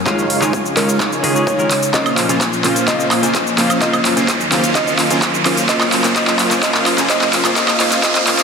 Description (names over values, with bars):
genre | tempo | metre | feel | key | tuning
EDM, festival progressive house | 128 BPM | 4/4 | straight | unclear | A4 = 439 Hz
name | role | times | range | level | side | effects
lush unison pad | sustained chords | 0.0-8.4 s | Db2 to C5 | -24 LUFS | equal | chorus, sidechain pumping
riser | sound effects | 0.0-8.4 s | none | -23 LUFS | right 1 dB | none
direct-recorded clean electric guitar | accompaniment | 0.1-8.4 s | Db3 to Bb4 | -24 LUFS | left 3 dB | vintage 12-bit sampler grit, sidechain pumping, ping-pong delay
supersaw chords | riff | 0.1-8.4 s | Ab3 to Ab5 | -18 LUFS | equal | sidechain pumping, low-pass filter, ping-pong delay
big-room dance drum kit | drums | 0.1-8.4 s | handclaps, hi-hat, shaker, woodblock | -17 LUFS | equal | overdrive
electronic kick drum | drums | 0.1-8.1 s | none | -26 LUFS | equal | overdrive, high-pass filter on kick
soft struck synth lead | melody | 0.8-8.4 s | Bb4 to Eb5 | -23 LUFS | equal | chorus, ping-pong delay
room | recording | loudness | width
wet lush hall reverb, RT60 2.1 s | dense, heavily limited modern master, high-pass filter | -12 LUFS | side -6 dB against mid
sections
0.0-8.4 A section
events
build-up 0.0-8.4; drum fill 0.0-8.4; riser 0.0-8.4; filter sweep on supersaw synth 0.0-8.4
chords
0.1 Dbadd9; 1.9 Bbmadd9; 3.8 Ebm; 5.7 Gb; 7.6 Dbadd9